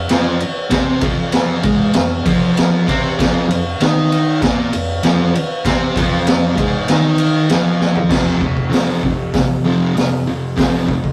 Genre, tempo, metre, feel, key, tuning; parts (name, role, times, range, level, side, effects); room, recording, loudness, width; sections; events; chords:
garage rock duo or trio; 97 BPM; 4/4; straight; A4 = 440 Hz
fuzz guitar; riff; 0.0-11.1 s; F2 to Eb4; -18 LUFS; equal; distortion
raw garage drum kit; drums; 0.1-11.1 s; crash cymbal, hi-hat, kick drum, ride cymbal, snare drum, toms; -19 LUFS; equal
moderate studio ambience, RT60 0.5 s; rough rehearsal-room recording, tube saturation; -16 LUFS; mono
0.0-8.1 A section; 8.1-11.1 B section
drum fill 7.8-8.1
0.0 F5